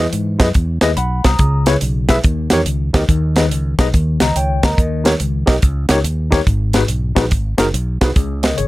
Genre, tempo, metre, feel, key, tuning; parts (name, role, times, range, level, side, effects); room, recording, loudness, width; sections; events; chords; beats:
uptempo gospel; 142 BPM; 4/4; swing 65% on 8ths; G# minor; A4 = 440 Hz
tine electric piano; accompaniment; 0.0-8.7 s; G#2 to D#6; -18 LUFS; left 2 dB; medium stereo tremolo
fingered electric bass; bass; 0.0-8.7 s; F#1 to G#2; -18 LUFS; equal
tight funk drum kit; drums; 0.1-8.7 s; hi-hat, kick drum, snare drum; -15 LUFS; equal
light reverb; -13 LUFS; side -18 dB against mid
0.0-8.7 A section
tine electric piano fill 3.9-4.8
0.0 Emaj7; 1.4 C#m7; 2.2 D#7; 3.1 G#m/D#; 3.9 D#7; 6.5 G#m7; 8.2 C#5
0.13 0.55 0.97 | 1.40 1.82 2.24 2.67 | 3.09 3.51 3.93 4.36 | 4.78 5.20 5.62 6.05 | 6.47 6.89 7.31 7.74 | 8.16 8.58